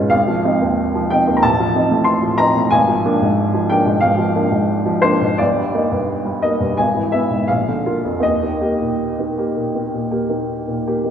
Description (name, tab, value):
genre	classical, romantic character piece for solo piano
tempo	76-95 BPM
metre	4/4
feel	rubato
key	Eb major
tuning	A4 = 440 Hz
part	clear upright piano	solo	0.0-11.1 s	G1 to C6	-15 LUFS	equal	none
room	wet concert hall reverb, RT60 2.4 s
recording	recorded in a church or concert hall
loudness	-15 LUFS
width	side -8 dB against mid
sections	0.0-11.1 A section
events	none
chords	0.1 Fm7/Ab; 1.4 F7/A; 2.7 Bb7/Ab; 5.4 Eb/G; 6.8 E/G#; 7.5 Bb; 8.2 Eb